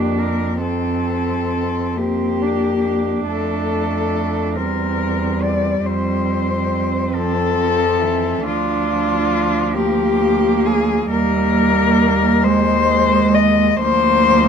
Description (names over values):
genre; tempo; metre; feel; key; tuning
classical, lyrical piece for cello ensemble; 46 BPM (dotted quarters); 6/8; uneven beats, rubato; F major; A4 = 440 Hz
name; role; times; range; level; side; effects
muted cello; melody; 0.0-14.5 s; F4 to Eb5; -19 LUFS; left 7 dB; none
muted cello; second line; 0.0-14.5 s; Ab3 to D4; -22 LUFS; right 9 dB; none
muted cello; accompaniment; 0.0-14.5 s; E3 to C4; -22 LUFS; left 1 dB; none
muted cello; bass; 0.0-14.5 s; D2 to F2; -22 LUFS; right 2 dB; none
room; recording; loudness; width
moderate studio reverb, RT60 0.7 s; minimal, uncompressed stereo recording; -15 LUFS; side -7 dB against mid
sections
0.0-14.5 A section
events
none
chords
0.0 Gm7/F; 0.6 C5/F; 3.3 F; 4.6 C7/E; 5.8 F; 8.4 Bb/D; 11.1 Eb; 12.4 Ab/Eb; 13.8 Bb/D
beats
| 0.62 1.97 | 3.27 4.57 | 5.85 7.13 | 8.45 9.75 | 11.10 12.44 | 13.80